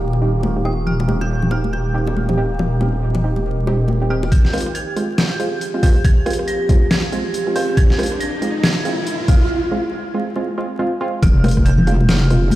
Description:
deep dubstep; 139 BPM; 4/4; swing 60% on 16ths, half-time; F minor; A4 = 444 Hz
overtone-sweeping drone; sustained chords; 0.0-12.6 s; Eb3 to G4; -26 LUFS; right 1 dB; chorus, built-in reverb
filtered dub chord stab; stabs; 0.0-12.4 s; Ab3 to G4; -24 LUFS; right 2 dB; chorus, dub echo
wobble bass; bass; 0.0-4.3, 11.2-12.6 s; Eb1 to F1; -17 LUFS; equal; chorus
wind-like tuned noise texture; texture; 0.0-4.3 s; G4; -31 LUFS; right 3 dB; built-in reverb
bongos and congas; percussion; 0.1-4.3, 11.2-12.6 s; -22 LUFS; left 2 dB
dark detuned synth bell; melody; 0.7-12.6 s; Eb6 to Bb6; -30 LUFS; right 2 dB; chorus, tremolo, dub echo
dubstep drum kit; drums; 4.3-12.6 s; hi-hat, rim click, snare drum; -22 LUFS; equal; overdrive, small room ambience
electronic kick drum; drums; 4.3-11.6 s; -13 LUFS; equal; overdrive, small room ambience
riser; sound effects; 6.1-9.5 s; -26 LUFS; equal
light reverb, digital ambience; played on a big sound system in a bare room, large studio reverb, vinyl crackle; -15 LUFS; side -15 dB against mid
0.0-4.3 A section; 4.3-11.2 B section; 11.2-12.6 C section
build-up 4.3-11.2; riser 6.1-9.5; break 9.5-11.2; drop 11.2-12.6
0.0 Eb6; 4.3 Fm
0.00 0.43 | 0.86 1.30 1.73 2.16 | 2.59 3.02 3.46 3.89 | 4.32 4.75 5.18 5.61 | 6.04 6.48 6.91 7.34 | 7.77 8.20 8.63 9.07 | 9.50 9.93 10.36 10.79 | 11.22 11.66 12.09 12.52

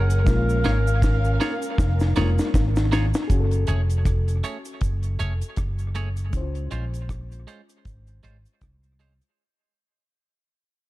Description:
lovers rock reggae; 79 BPM; 4/4; swing 58% on 16ths; Db major; A4 = 441 Hz
warm alto saxophone; melody; 0.0-2.5 s; Bb4; -30 LUFS; equal; tape echo
dark studio violin section; second line; 0.0-3.3 s; Db4 to Gb5; -33 LUFS; equal
mellow FM electric piano; accompaniment; 0.0-9.4 s; F3 to C5; -33 LUFS; left 4 dB; chorus, dub echo
mellow fretless electric bass; bass; 0.0-9.2 s; F1 to Db2; -22 LUFS; equal; lush chorus
deep reggae drum kit; drums; 0.1-9.4 s; hi-hat, kick drum, rim click, snare drum; -24 LUFS; equal; dub echo
cabasa; percussion; 0.1-9.4 s; -45 LUFS; right 7 dB
twangy electric guitar; stabs; 0.6-9.1 s; Ab3 to Db5; -34 LUFS; right 5 dB; harmonic tremolo, dub echo
small room ambience; dark, warm production; -20 LUFS; side -17 dB against mid
0.0-3.3 A section; 3.3-9.4 B section
drum fill 0.3-3.3; fade-out 3.3-9.4
0.3 Bbm7; 3.3 Gbmadd9; 6.3 Dbmaj7
| 0.26 1.02 1.78 2.54 | 3.30 4.06 4.82 5.58 | 6.34 7.10 7.86 8.62

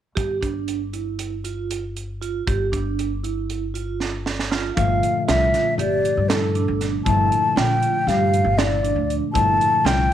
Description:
progressive instrumental, band music in an uneven meter; 236 BPM (eighths); 9/8; straight; G dorian; A4 = 438 Hz
vibraphone with medium mallets; arpeggios; 0.2-10.1 s; D4 to G4; -27 LUFS; right 8 dB
upright bass; bass; 0.2-10.1 s; G1 to G2; -25 LUFS; left 1 dB
crisp fusion drum kit; drums; 0.2-10.0 s; hi-hat, kick drum, snare drum; -26 LUFS; right 3 dB
mellow hollow concert flute; melody; 4.8-10.1 s; A4 to A5; -20 LUFS; left 1 dB
overdriven tine electric piano; accompaniment; 4.8-10.1 s; Bb2 to A3; -27 LUFS; left 9 dB
moderate plate reverb, RT60 1.3 s, studio ambience; 1960s-style stereo with parts hard left and right; -19 LUFS; side -10 dB against mid
0.2-4.8 A section; 4.8-10.1 B section
drum fill 4.0-4.8
0.2 G5; 4.8 Gm9
| 0.17 0.42 0.68 0.93 1.19 1.45 1.70 1.96 2.21 | 2.47 2.72 2.98 3.23 3.49 3.74 4.00 4.25 4.51 | 4.76 5.02 5.27 5.53 5.78 6.04 6.29 6.54 6.80 | 7.05 7.31 7.56 7.82 8.07 8.32 8.58 8.83 9.09 | 9.34 9.60 9.85 10.10

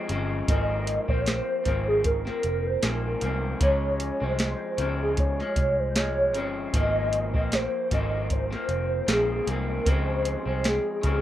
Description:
indie pop, bedroom pop; 77 BPM; 4/4; swing 55% on 16ths; Ab major; A4 = 439 Hz
warbly nostalgic lead; melody; 0.0-11.2 s; Ab4 to Eb5; -27 LUFS; equal; ensemble chorus, slapback echo
electric guitar through a small old amp; accompaniment; 0.0-11.2 s; Ab2 to C4; -31 LUFS; left 2 dB; lush chorus, warbly pitch drift
vintage muted picked electric bass; bass; 0.1-11.2 s; F1 to Db2; -30 LUFS; equal
soft vintage rhythm box; drums; 0.1-11.2 s; hi-hat, kick drum, snare drum; -26 LUFS; equal
moderate studio ambience, RT60 0.5 s; rough home demo mix; -23 LUFS; side -12 dB against mid
0.0-11.2 A section
0.5 Ab69; 3.6 Dbmaj7; 6.7 Ab69; 9.9 Dbmaj7
| 0.48 1.27 2.05 2.83 | 3.61 4.39 5.18 5.96 | 6.74 7.52 8.30 9.08 | 9.86 10.64

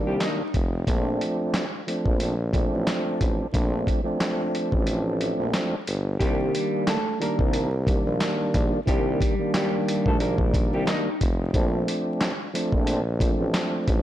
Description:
hip hop, boom-bap hip-hop; 90 BPM; 4/4; swing 56% on 16ths; C dorian; A4 = 440 Hz
semi-hollow electric guitar; melody; 0.0-0.5, 6.2-11.2 s; G3 to Eb5; -30 LUFS; left 2 dB; high-pass filter, low-pass filter, tape echo
tonewheel organ; accompaniment; 0.0-14.0 s; Eb3 to D4; -27 LUFS; right 1 dB; overdrive, chorus vibrato, slow rotary speaker, high-pass filter, low-pass filter
clear tuba; bass; 0.1-14.0 s; F1 to C2; -26 LUFS; equal; transformer saturation
dusty soul sampler-style drum kit; drums; 0.2-14.0 s; handclaps, hi-hat, kick drum, snare drum; -26 LUFS; equal
little or no reverb; blown-out, overdriven recording, vinyl crackle, overdrive; -22 LUFS; side -13 dB against mid
0.0-6.2 A section; 6.2-14.0 B section
kick muted 4.9-6.2
0.0 Cm7; 0.9 Bbmaj7; 6.2 Cm7; 11.5 Bbmaj7
0.21 | 0.87 1.54 2.21 2.87 | 3.54 4.21 4.87 5.54 | 6.21 6.87 7.54 8.21 | 8.87 9.54 10.21 10.87 | 11.54 12.21 12.87 13.54

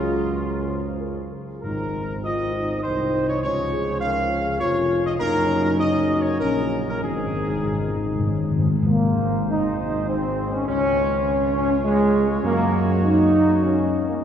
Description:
classical; 100 BPM; 3/4; straight; Ab mixolydian; A4 = 439 Hz
warm trumpet section; melody; 0.0-14.2 s; F4 to F5; -27 LUFS; equal
dark French horn section; sustained chords; 0.0-14.2 s; Ab3 to C5; -26 LUFS; left 2 dB
warm trombone section; sustained chords; 0.0-14.2 s; Db3 to Eb4; -25 LUFS; right 1 dB
mellow tuba; bass; 0.0-14.2 s; F1 to Gb2; -26 LUFS; right 1 dB
timpani; percussion; 1.6-2.5, 7.0-8.9 s; Ab2; -26 LUFS; left 2 dB
wet cathedral reverb, RT60 4.9 s; heard from further back in the room; -19 LUFS; side -8 dB against mid
0.0-8.9 A section; 8.9-14.2 A section
timpani fill 7.0-8.9
0.0 Db; 1.6 Abadd9; 3.4 Db; 5.2 Gb; 7.0 Ab; 8.9 Abadd9; 10.7 Db; 12.4 Gb
0.40 1.02 | 1.64 2.24 2.84 | 3.43 4.02 4.61 | 5.20 5.79 6.41 | 7.03 7.65 8.27 | 8.90 9.50 10.09 | 10.68 11.26 11.85 | 12.44 13.03 13.63

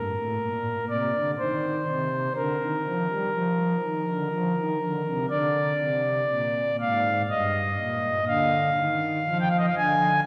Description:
classical, chorale-style piece for pipe organ; 61 BPM; 3/4; rubato; Bb major; A4 = 440 Hz
pipe organ, principal; solo; 0.0-10.2 s; G2 to Ab5; -26 LUFS; equal
wet church reverb, RT60 2.9 s; -26 LUFS; mono
0.0-10.3 A section
0.0 Bb; 1.4 Cm/Eb; 2.4 Bb/D; 5.3 Bb7; 7.3 Eb/G; 8.3 Ddim
0.40 1.38 | 2.36 3.33 4.32 | 5.30 6.30 7.29 | 8.27 9.27

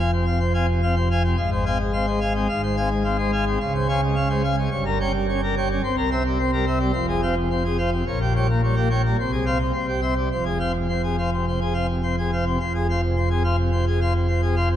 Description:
classical, organ toccata; 107 BPM; 4/4; straight; F minor; A4 = 435 Hz
pipe organ, plenum; solo; 0.0-14.8 s; F1 to Ab5; -20 LUFS; equal
wet church reverb, RT60 2.5 s; vinyl crackle; -20 LUFS; side -10 dB against mid
0.0-12.6 A section; 12.6-14.8 A section
0.0 Fm; 1.4 Fm/Ab; 3.6 Dbmaj7; 4.7 Gdim; 5.8 C7; 6.9 Fm; 8.1 Gdim/Bb; 9.2 Fm/C; 9.7 C; 10.3 Fm
0.27 0.83 | 1.38 1.94 2.49 3.05 | 3.61 4.17 4.72 5.28 | 5.83 6.38 6.94 7.50 | 8.06 8.62 9.18 9.74 | 10.31 10.88 11.46 12.03 | 12.60 13.16 13.72 14.29

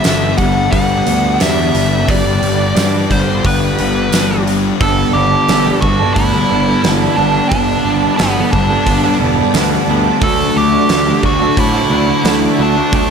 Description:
rock, shoegaze and dream pop; 88 BPM; 4/4; straight; A4 = 435 Hz
nasal lead guitar with a parked wah; melody; 0.0-13.1 s; B3 to F#5; -18 LUFS; right 1 dB; overdrive, slapback echo
soft additive organ-like pad; sustained chords; 0.0-13.1 s; G3 to D6; -24 LUFS; right 4 dB; ensemble chorus, built-in reverb
twangy electric guitar; arpeggios; 0.0-13.1 s; F#3 to A4; -24 LUFS; left 11 dB; wide subtle chorus, slapback echo
electric guitar through a small old amp; riff; 0.0-13.1 s; D3 to A4; -18 LUFS; right 12 dB; reverse reverb
thick fuzz guitar; riff; 0.0-13.1 s; G2 to D4; -18 LUFS; left 8 dB; distortion, ensemble chorus
huge arena drum kit; drums; 0.0-13.1 s; hi-hat, kick drum, snare drum; -18 LUFS; right 1 dB
tambourine; percussion; 0.0-4.3 s; -28 LUFS; right 15 dB
fuzz picked electric bass; bass; 0.1-13.1 s; E1 to A2; -18 LUFS; right 1 dB; overdrive
moderate concert hall reverb, RT60 1.9 s, small room ambience; -11 LUFS; side -6 dB against mid
0.0-4.8 A section; 4.8-13.1 B section
0.0 Gadd9; 10.2 D
0.05 0.73 1.41 | 2.08 2.76 3.44 4.12 | 4.80 5.48 6.16 6.83 | 7.51 8.19 8.87 9.55 | 10.22 10.90 11.58 12.26 | 12.93

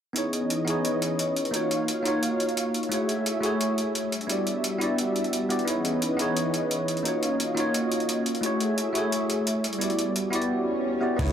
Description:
liquid drum and bass; 174 BPM; 4/4; straight; A4 = 439 Hz
bell-like tine electric piano; accompaniment; 0.1-11.3 s; A3 to D5; -26 LUFS; equal; phaser, dub echo
warm analog pad; sustained chords; 0.2-10.5 s; E3 to E#5; -30 LUFS; equal; chorus, vintage 12-bit sampler grit, sidechain pumping
breakbeat sampler-style drum kit; drums; 0.2-11.3 s; crash cymbal, hi-hat, shaker; -32 LUFS; equal; overdrive
swell and downlifter; sound effects; 10.6-11.3 s; -32 LUFS; equal
dark detuned saw bass; bass; 11.2-11.3 s; C#2; -24 LUFS; equal
electronic kick drum; drums; 11.2-11.3 s; -32 LUFS; equal; overdrive
moderate huge ambient reverb, RT60 4.6 s; -24 LUFS; side -9 dB against mid
0.2-11.2 A section
swell 10.6-11.2
0.2 C#m9; 1.5 D#m9; 2.9 F#m9; 4.1 Em9; 5.7 C#m9; 7.1 D#m9; 8.4 F#m9; 9.6 Em9
| 0.16 0.50 0.85 1.19 | 1.54 1.88 2.23 2.57 | 2.92 3.26 3.61 3.95 | 4.30 4.64 4.99 5.33 | 5.68 6.02 6.37 6.71 | 7.05 7.40 7.75 8.09 | 8.43 8.78 9.12 9.47 | 9.81 10.16 10.50 10.85 | 11.19

